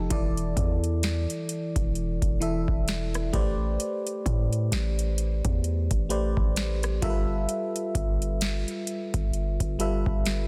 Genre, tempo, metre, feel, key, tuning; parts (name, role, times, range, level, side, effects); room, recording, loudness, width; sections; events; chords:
contemporary R&B; 65 BPM; 4/4; swing 58% on 16ths; A minor; A4 = 440 Hz
FM electric piano; accompaniment; 0.0-10.5 s; E3 to E5; -33 LUFS; equal; chorus
warm 808-style bass; bass; 0.0-10.5 s; E1 to A2; -30 LUFS; equal
booming analog drum machine; drums; 0.1-10.5 s; hi-hat, kick drum, rim click, snare drum; -31 LUFS; equal; overdrive
little or no reverb; dense, heavily limited modern master; -27 LUFS; mono
0.0-10.5 A section
0.1 E7sus4; 3.3 Am11; 7.0 G13